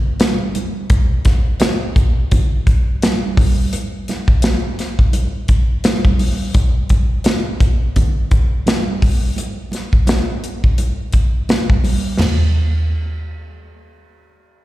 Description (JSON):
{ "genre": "soul", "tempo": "85 BPM", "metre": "4/4", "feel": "swing 58% on 16ths", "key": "none", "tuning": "none", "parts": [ { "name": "modern studio drum kit", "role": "drums", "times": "0.2-12.4 s", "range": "crash cymbal, hi-hat, kick drum, snare drum, toms", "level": "-15 LUFS", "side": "equal", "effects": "none" }, { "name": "congas", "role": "percussion", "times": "0.2-12.5 s", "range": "none", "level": "-25 LUFS", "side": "right 3 dB", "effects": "slapback echo" } ], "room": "light reverb, small room reverb", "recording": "live gig heard through the venue's PA, recital hall reverb", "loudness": "-14 LUFS", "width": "side -16 dB against mid", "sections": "0.9-12.2 A section; 12.2-14.6 B section", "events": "none", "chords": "none", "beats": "0.20 | 0.90 1.61 2.31 3.02 | 3.72 4.43 5.13 5.84 | 6.55 7.25 7.96 8.66 | 9.37 10.07 10.78 11.48 | 12.19" }